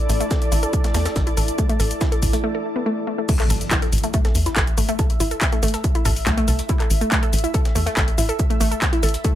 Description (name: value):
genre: driving peak-time techno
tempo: 141 BPM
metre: 4/4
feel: straight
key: unclear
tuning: A4 = 440 Hz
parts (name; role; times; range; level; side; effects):
- granular cloud pad; texture; 0.0-9.4 s; E4 to A5; -29 LUFS; right 1 dB; built-in reverb, sidechain pumping
- wide unison pluck; riff; 0.1-9.3 s; A3 to A4; -25 LUFS; equal; sidechain pumping, ping-pong delay
- tight sequencer bass; bass; 0.1-9.2 s; A1 to E2; -21 LUFS; equal; sidechain pumping
- breakbeat sampler-style drum kit; drums; 0.1-9.3 s; hi-hat, shaker, snare drum; -34 LUFS; right 2 dB; high-pass filter on snare, high-pass filter on perc, high-pass filter on hats
- punchy analog drum machine; drums; 0.1-9.3 s; crash cymbal, handclaps, hi-hat, shaker; -26 LUFS; left 2 dB; overdrive, sidechain pumping on hats, sidechain pumping on perc, sidechain pumping on cymbals
- electronic kick drum; drums; 0.3-9.3 s; none; -21 LUFS; equal; none
- impact; sound effects; 3.3-5.0 s; none; -30 LUFS; equal; none
room: digital ambience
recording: none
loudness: -18 LUFS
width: side -12 dB against mid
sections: 0.0-3.3 A section; 3.3-9.4 B section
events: filter sweep on synth arpeggio sound 0.0-3.3; break 2.4-3.3; drop 3.3-9.4; impact 3.3-5.0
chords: 0.0 A5